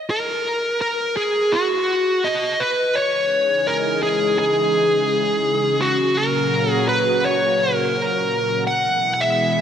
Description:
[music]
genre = synthwave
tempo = 84 BPM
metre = 4/4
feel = straight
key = C# dorian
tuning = A4 = 440 Hz
[part]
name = smooth overdriven lead guitar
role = melody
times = 0.1-9.6 s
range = F#4 to F#5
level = -18 LUFS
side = equal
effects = slapback echo, digital delay
[part]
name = lush unison pad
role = sustained chords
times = 3.3-9.6 s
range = A#2 to A#5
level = -23 LUFS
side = equal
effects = chorus, phaser
[sound]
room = wet lush hall reverb, RT60 2.8 s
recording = big arena sound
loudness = -17 LUFS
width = side -8 dB against mid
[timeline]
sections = 0.0-3.0 A section; 3.0-9.6 B section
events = none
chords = 0.0 N.C.; 3.0 C#madd9; 5.8 F#; 8.7 E

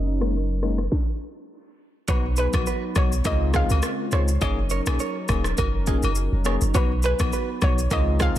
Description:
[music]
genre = afrobeats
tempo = 103 BPM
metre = 4/4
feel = swing 55% on 16ths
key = unclear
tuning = A4 = 441 Hz
[part]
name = soft round pluck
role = melody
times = 0.0-8.4 s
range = Cb5 to F5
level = -30 LUFS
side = right 1 dB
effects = chorus, ping-pong delay
[part]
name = warm analog pad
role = sustained chords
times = 0.0-8.4 s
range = Db3 to Bb4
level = -32 LUFS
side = right 2 dB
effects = chorus
[part]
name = clean 808-style bass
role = bass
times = 0.0-8.4 s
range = Eb1 to Db2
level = -23 LUFS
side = equal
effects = none
[part]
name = afro-pop drum kit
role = drums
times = 0.0-8.4 s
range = kick drum, rim click, shaker, snare drum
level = -26 LUFS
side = equal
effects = overdrive
[part]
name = bell-like tine electric piano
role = accompaniment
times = 0.2-8.4 s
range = Gb3 to Ab4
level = -31 LUFS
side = left 6 dB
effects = none
[part]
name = direct-recorded clean electric guitar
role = riff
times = 2.1-8.4 s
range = F4 to Eb5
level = -32 LUFS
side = right 8 dB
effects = spring reverb, ping-pong delay
[part]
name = agogo bells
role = percussion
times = 2.1-8.1 s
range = none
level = -35 LUFS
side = left 10 dB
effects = none
[sound]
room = digital ambience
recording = dense, heavily limited modern master, low-pass filter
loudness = -20 LUFS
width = side -12 dB against mid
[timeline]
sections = 0.0-2.1 A section; 2.1-8.4 B section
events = filter sweep 0.0-2.1; stop 0.9-2.1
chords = 0.0 Gb6; 2.1 Cb; 3.2 Dbmaj7; 4.4 Gb6; 6.7 Cb

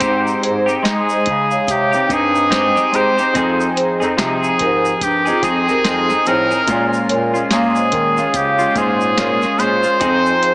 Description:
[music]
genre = indie pop, bedroom pop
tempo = 72 BPM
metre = 4/4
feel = swing 60% on 16ths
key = Ab major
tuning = A4 = 440 Hz
[part]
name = clear trumpet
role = melody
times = 0.0-10.5 s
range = G4 to C5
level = -17 LUFS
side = equal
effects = lush chorus, digital delay
[part]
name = semi-hollow electric guitar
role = accompaniment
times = 0.0-10.5 s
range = Bb2 to Ab4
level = -19 LUFS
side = equal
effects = analog chorus, warbly pitch drift
[part]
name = mellow bass clarinet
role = bass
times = 0.0-10.3 s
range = F2 to Bb3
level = -21 LUFS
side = equal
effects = none
[part]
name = soft vintage rhythm box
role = drums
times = 0.0-10.5 s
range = hi-hat, kick drum, snare drum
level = -22 LUFS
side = equal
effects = none
[part]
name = tube shaker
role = percussion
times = 0.0-10.4 s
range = none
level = -36 LUFS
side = right 1 dB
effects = none
[part]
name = vibraphone with medium mallets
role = second line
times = 0.4-10.5 s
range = F4 to F5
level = -21 LUFS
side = right 1 dB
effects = analog chorus, digital delay
[sound]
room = wet spring reverb, RT60 2.7 s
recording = heavily compressed radio sound, multiband compression, small speaker sound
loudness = -13 LUFS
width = side -28 dB against mid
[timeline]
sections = 0.0-10.5 A section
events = none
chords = 0.0 Abmaj7; 3.3 Fm7; 6.7 Bbm7; 10.0 Fm7

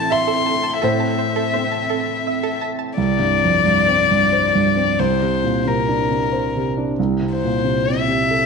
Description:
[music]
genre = neoclassical piano and strings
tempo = 83-92 BPM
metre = 3/4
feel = rubato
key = C mixolydian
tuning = A4 = 440 Hz
[part]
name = warm violin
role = melody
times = 0.0-8.5 s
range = Bb4 to C6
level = -19 LUFS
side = left 7 dB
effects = none
[part]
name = warm grand piano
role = accompaniment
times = 0.0-8.5 s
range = C2 to E5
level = -20 LUFS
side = right 3 dB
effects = none
[part]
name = ethereal airy pad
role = sustained chords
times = 0.0-3.0 s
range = C4 to E5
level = -27 LUFS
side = right 4 dB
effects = ensemble chorus, built-in reverb
[part]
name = string-like resonator pluck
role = arpeggios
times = 0.1-2.9 s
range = A4 to A5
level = -27 LUFS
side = right 11 dB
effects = chorus, slapback echo
[sound]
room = wet echo chamber reverb, RT60 1.4 s, studio reverb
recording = 1960s-style stereo with parts hard left and right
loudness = -16 LUFS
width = side -5 dB against mid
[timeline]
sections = 0.0-3.0 A section; 3.0-8.5 B section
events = none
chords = 0.0 Am; 3.0 C5; 5.0 Bbadd9/C; 7.0 Am/C (rootless)

